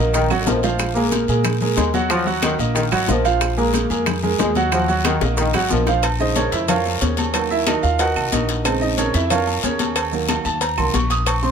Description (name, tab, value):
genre	latin, salsa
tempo	183 BPM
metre	4/4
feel	straight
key	Bb minor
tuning	A4 = 440 Hz
part	bright baby grand piano	accompaniment	0.0-11.5 s	Db3 to Eb6	-20 LUFS	right 4 dB	none
part	upright bass	bass	0.0-11.5 s	Ab1 to Bb2	-23 LUFS	left 1 dB	none
part	warm trombone section	second line	0.1-5.9 s	Eb3 to Bb3	-23 LUFS	left 3 dB	none
part	bongos and cowbell	percussion	0.1-11.4 s	none	-28 LUFS	left 8 dB	none
part	congas	percussion	0.1-11.5 s	none	-26 LUFS	left 7 dB	none
part	guiro	percussion	0.1-11.5 s	none	-31 LUFS	left 9 dB	none
part	maracas	percussion	0.1-11.5 s	none	-33 LUFS	right 6 dB	none
part	timbales and agogo bells	percussion	0.1-11.4 s	none	-28 LUFS	right 5 dB	none
part	claves	percussion	0.3-11.4 s	none	-29 LUFS	right 7 dB	none
room	light reverb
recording	none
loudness	-16 LUFS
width	side -7 dB against mid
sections	0.0-6.0 A section; 6.0-11.5 B section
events	drum fill 0.3-0.8, 5.2-6.0; grand piano solo 6.0-11.5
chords	0.0 Ebm; 0.8 Bb5; 2.1 Ebm; 3.4 Bb5; 4.7 Ebm; 6.0 Bbm7; 7.3 Ebm; 8.7 Bbm7; 10.0 Ebm